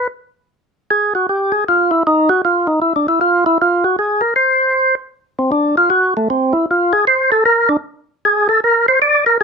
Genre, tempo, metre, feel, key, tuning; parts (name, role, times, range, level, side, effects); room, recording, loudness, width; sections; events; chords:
jazz; 155 BPM; 4/4; swing 66% on 8ths; A4 = 440 Hz
percussive tonewheel organ; solo; 0.0-9.4 s; A3 to D5; -12 LUFS; equal; slow rotary speaker
light reverb; close, detailed microphones; -12 LUFS; side -5 dB against mid
0.5-9.4 A section
tonewheel organ solo 0.5-9.4